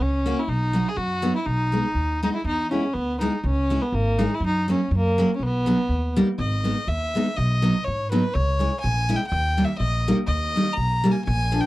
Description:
alpine folk, alpine dance band; 122 BPM; 2/4; straight; B major; A4 = 438 Hz
rich fiddle; melody; 0.0-11.7 s; A#3 to A#5; -25 LUFS; equal
upright bass; bass; 0.0-11.6 s; G#1 to G#2; -24 LUFS; equal
picked steel-string acoustic guitar; accompaniment; 0.3-11.6 s; E#3 to F#4; -23 LUFS; equal
light reverb; dry, close 1970s-style studio recording; -20 LUFS; side -17 dB against mid
0.0-6.4 A section; 6.4-11.7 B section
0.0 F#; 0.5 B; 1.5 G#m/B; 2.5 E; 3.5 C#m; 4.4 F#; 5.4 B; 5.9 D#; 6.4 G#m; 7.4 B; 8.3 C#m; 9.3 D#
0.01 | 0.50 0.99 | 1.48 1.97 | 2.47 2.96 | 3.45 3.94 | 4.43 4.92 | 5.41 5.90 | 6.39 6.88 | 7.38 7.86 | 8.34 8.83 | 9.31 9.80 | 10.30 10.79 | 11.28

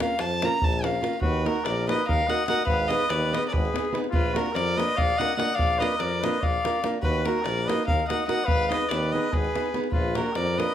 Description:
balkan folk, Balkan wedding band; 290 BPM (eighths); 7/8; straight; Eb harmonic minor; A4 = 439 Hz
warm fiddle; melody; 0.0-10.7 s; Bb4 to Bb5; -27 LUFS; equal
nylon-string guitar; accompaniment; 0.0-10.7 s; Bb3 to Cb5; -30 LUFS; right 3 dB
davul; percussion; 0.0-10.7 s; -29 LUFS; equal
clear tuba; bass; 0.2-10.6 s; Ab1 to F2; -30 LUFS; equal
warm trumpet; second line; 1.2-10.7 s; F4 to Eb5; -30 LUFS; left 2 dB
moderate large studio reverb, RT60 0.9 s; band playing live in one room; -22 LUFS; side -10 dB against mid
0.0-1.2 A section; 1.2-10.7 B section
fiddle solo 0.0-1.2
0.0 Bbm; 1.2 Ebm; 2.7 Abm; 4.1 Bb; 7.0 Ebm; 8.5 Abm; 9.9 Bb
0.19 0.40 0.60 0.81 1.02 | 1.22 1.43 1.64 1.84 2.05 2.26 2.46 | 2.67 2.88 3.09 3.29 3.50 3.71 3.92 | 4.12 4.33 4.54 4.75 4.95 5.16 5.37 | 5.58 5.78 5.99 6.20 6.41 6.61 6.82 | 7.03 7.24 7.45 7.65 7.86 8.07 8.28 | 8.48 8.69 8.90 9.10 9.31 9.52 9.72 | 9.93 10.14 10.35 10.55

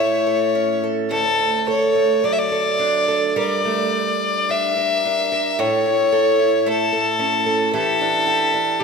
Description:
celtic folk, Celtic slow air; 52-56 BPM; 4/4; rubato; D major; A4 = 443 Hz
rich fiddle; melody; 0.0-8.8 s; G4 to E5; -18 LUFS; left 3 dB
picked old ladder-braced acoustic guitar; accompaniment; 0.0-8.8 s; D2 to Bb4; -22 LUFS; right 6 dB
wet church reverb, RT60 3.1 s; minimal, uncompressed stereo recording; -16 LUFS; side -5 dB against mid
0.0-8.8 A section
0.0 A; 1.1 D; 3.4 Gmadd9; 5.6 A; 7.7 Em7
| 1.11 2.24 3.37 4.49 | 5.59 6.67 7.73 8.80

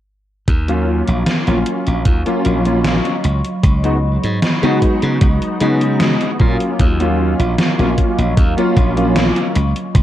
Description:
vaporwave; 76 BPM; 4/4; straight; Eb minor; A4 = 440 Hz
warbly tape-like pad; sustained chords; 1.5-10.0 s; Gb3 to Eb6; -25 LUFS; equal; chorus, built-in reverb
glassy slap bass; bass; 0.5-10.0 s; Bb1 to Db3; -17 LUFS; equal
electronic kick drum; drums; 0.5-10.0 s; -14 LUFS; equal
gated 80s digital drum machine; drums; 0.5-10.0 s; hi-hat, snare drum; -20 LUFS; equal; gated reverb, gated reverb snare
warm electric grand piano; accompaniment; 0.7-9.5 s; Gb3 to Gb4; -18 LUFS; left 1 dB; ensemble chorus, tape echo
light reverb, digital ambience; cassette tape; -13 LUFS; side -12 dB against mid
0.5-6.8 A section; 6.8-10.0 B section
0.5 Ebm9; 3.2 Db9sus4; 6.8 Ebm9
| 0.48 1.27 2.06 2.85 | 3.64 4.43 5.22 6.01 | 6.80 7.58 8.38 9.16 | 9.95

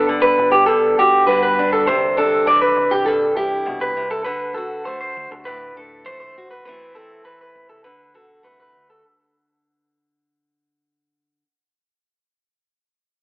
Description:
highlife; 100 BPM; 4/4; straight; A4 = 441 Hz
fingerpicked steel-string acoustic guitar; accompaniment; 0.0-11.4 s; G2 to A4; -26 LUFS; left 1 dB
electric guitar at the edge of break-up; arpeggios; 0.0-9.0 s; G4 to D5; -16 LUFS; equal; analog delay
deep dub fingered electric bass; bass; 0.0-9.0 s; G1 to G2; -37 LUFS; equal
moderate spring reverb, RT60 2.2 s; telephone sound; -15 LUFS; side -27 dB against mid
0.0-9.0 A section
fade-out 0.0-9.0
0.0 Gmaj7; 1.9 Cadd9; 4.3 D7; 6.7 Am; 7.8 D
0.08 0.68 1.28 | 1.88 2.48 3.07 3.67 | 4.27 4.87 5.46 6.06 | 6.66 7.25 7.85 8.45

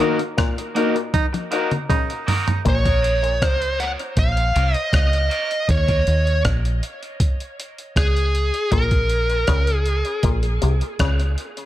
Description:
dub reggae; 79 BPM; 4/4; straight; Bb minor; A4 = 439 Hz
electric guitar at the edge of break-up; accompaniment; 0.0-5.5 s; Bb3 to Bb4; -28 LUFS; right 4 dB; high-pass filter, dub echo
auto-wah clav; riff; 0.0-2.9, 8.7-11.2 s; Bb2 to Eb3; -30 LUFS; left 8 dB; overdrive, dub echo
clear upright piano; stabs; 0.0-2.5 s; Bb3 to Bb4; -26 LUFS; left 9 dB; high-pass filter, dub echo
breakbeat sampler-style drum kit; drums; 0.0-11.7 s; hi-hat, kick drum, rim click, toms; -22 LUFS; equal
breathy tenor saxophone; second line; 1.1-2.6 s; Eb4; -29 LUFS; right 6 dB; high-pass filter, dub echo
smooth overdriven lead guitar; melody; 2.7-10.3 s; Ab4 to Gb5; -23 LUFS; right 1 dB; dub echo
deep dub fingered electric bass; bass; 2.7-11.4 s; Bb1 to Eb2; -20 LUFS; equal
light reverb; -18 LUFS; side -14 dB against mid
0.0-11.7 A section
break 0.0-2.7; band accent 0.0-2.7; filter sweep 0.0-5.7; drum fill 1.1-2.7
0.0 Ebm; 2.7 Bbm; 5.7 Eb5; 8.7 Bbm
0.38 1.14 1.90 | 2.65 3.41 4.17 4.93 | 5.69 6.45 7.21 7.96 | 8.72 9.48 10.24 11.00

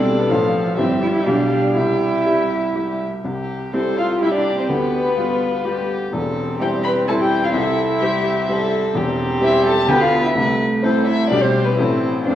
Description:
quick classical-period movement for piano quintet; 126 BPM; 3/4; rubato; C major; A4 = 440 Hz
dark violin; melody; 0.0-12.3 s; B4 to B5; -22 LUFS; left 4 dB
dark violin; second line; 0.0-12.3 s; E4 to B4; -24 LUFS; left 1 dB
warm cello; second line; 0.0-12.3 s; B3 to B4; -23 LUFS; right 3 dB
bright baby grand piano; accompaniment; 0.0-12.3 s; E1 to C5; -21 LUFS; left 1 dB
warm viola; accompaniment; 0.0-12.3 s; F3 to F4; -24 LUFS; right 2 dB
wet concert hall reverb, RT60 2.0 s; worn, warbling old tape, cassette tape, warbly pitch drift, studio reverb; -16 LUFS; side -11 dB against mid
0.0-3.2 A section; 3.2-12.3 A section
0.3 F/A; 0.8 C/G; 1.3 G7/B; 1.8 C; 4.7 G7/D; 6.1 C/E; 7.5 C; 9.0 C/E; 9.9 Bdim/D; 10.4 Am/C; 11.3 G/B; 11.8 Am
| 0.30 0.77 1.26 | 1.76 2.26 2.75 | 3.25 3.74 4.21 | 4.70 5.17 5.65 | 6.13 6.61 7.08 | 7.55 8.02 8.48 | 8.95 9.42 9.89 | 10.36 10.83 11.31 | 11.78 12.26

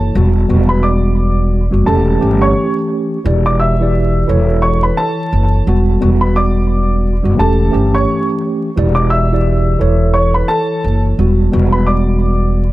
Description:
hip hop, boom-bap hip-hop; 87 BPM; 4/4; swing 59% on 16ths; A4 = 441 Hz
mellow tine electric piano; accompaniment; 0.0-12.7 s; E2 to D5; -16 LUFS; right 1 dB; medium stereo tremolo, high-pass filter, low-pass filter
upright bass; bass; 0.0-12.7 s; E1 to G1; -13 LUFS; equal
dark upright piano; melody; 0.7-12.7 s; A4 to E6; -19 LUFS; equal; high-pass filter, low-pass filter, digital delay
small room ambience; vinyl crackle; -11 LUFS; side -17 dB against mid
0.0-12.7 A section
0.1 Gmaj7/E; 1.9 A7/E; 3.2 Em7; 4.3 F#m7/E; 5.7 Gmaj7/E; 7.4 A7/E; 8.8 Em7; 9.8 F#m7/E; 11.2 Gmaj7/E
| 0.49 1.18 1.87 2.56 | 3.25 3.94 4.63 5.32 | 6.01 6.70 7.39 8.08 | 8.77 9.46 10.15 10.84 | 11.53 12.21

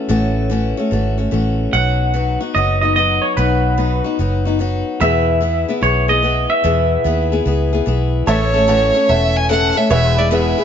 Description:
honky-tonk and classic country; 147 BPM; 4/4; swing 66% on 8ths; A4 = 440 Hz
picked acoustic archtop guitar; accompaniment; 0.0-10.6 s; E2 to A4; -19 LUFS; left 4 dB
vintage muted fingered electric bass; bass; 0.1-10.5 s; E1 to E2; -18 LUFS; equal
twangy electric guitar; second line; 1.7-7.8 s; B4 to F#5; -18 LUFS; right 2 dB; tape echo
clear fiddle; melody; 8.3-10.6 s; C#5 to G#5; -16 LUFS; right 2 dB
warm upright piano; accompaniment; 8.3-10.6 s; G#4 to F#5; -23 LUFS; right 5 dB
pedal steel guitar; sustained chords; 8.3-10.6 s; B4 to E5; -27 LUFS; right 1 dB
warm symphonic violin section; sustained chords; 8.3-10.6 s; A3 to E5; -28 LUFS; equal
light reverb; nothing above 7.6 kHz; -14 LUFS; side -8 dB against mid
0.0-8.3 A section; 8.3-10.6 B section
clean electric guitar solo 0.0-8.3
0.0 F#m7/A; 1.7 B; 5.0 E; 8.3 A; 9.9 E
| 0.10 0.50 0.91 1.32 | 1.73 2.14 2.55 2.96 | 3.37 3.78 4.19 4.60 | 5.01 5.42 5.82 6.23 | 6.64 7.05 7.46 7.87 | 8.28 8.69 9.09 9.50 | 9.91 10.32

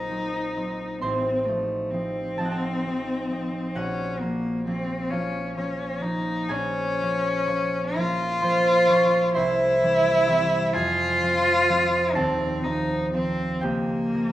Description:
classical, romantic duo for cello and harp; 43 BPM (dotted quarters); 6/8; uneven beats, rubato; Bb minor, F minor from 6.5 s; A4 = 440 Hz
warm cello; melody; 0.0-14.3 s; A3 to F4; -25 LUFS; left 1 dB
concert harp; accompaniment; 0.0-14.3 s; Eb1 to E6; -24 LUFS; right 1 dB
wet recital hall reverb, RT60 1.6 s; -22 LUFS; side -13 dB against mid
0.0-14.3 A section
0.0 Cm7b5/Bb; 1.0 F7/A; 3.8 Bbm; 6.5 Bbm7; 9.4 C; 10.7 Fm; 12.2 F7/Eb; 13.6 Bbm/Db
| 1.02 2.38 | 3.76 5.12 | 6.51 7.98 | 9.36 10.74 | 12.16 13.63

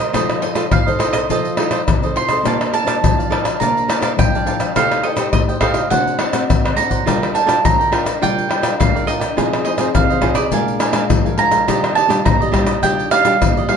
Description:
samba and choro; 104 BPM; 4/4; straight; Bb major; A4 = 440 Hz
mandolin; melody; 0.0-13.8 s; D5 to C6; -19 LUFS; right 4 dB
cavaquinho; accompaniment; 0.0-13.8 s; D4 to A5; -22 LUFS; right 5 dB
nylon-string guitar; accompaniment; 0.0-13.8 s; A2 to C5; -23 LUFS; left 3 dB
tube shaker, surdo, pandeiro and tamborim; percussion; 0.1-13.8 s; -17 LUFS; left 2 dB
moderate studio ambience, RT60 0.5 s; dark, warm production, nothing above 10.6 kHz; -14 LUFS; side -7 dB against mid
0.0-13.8 A section
drum fill 6.6-7.1
0.1 F7; 2.4 Bbmaj9; 4.8 Am7b5; 5.9 D7; 7.1 Gm7; 9.4 Fm7; 10.5 Bb7; 11.7 Ebmaj9
| 0.14 0.71 1.29 1.87 | 2.45 3.02 3.60 4.18 | 4.76 5.33 5.91 6.49 | 7.07 7.64 8.22 8.80 | 9.37 9.95 10.53 11.10 | 11.68 12.26 12.84 13.41

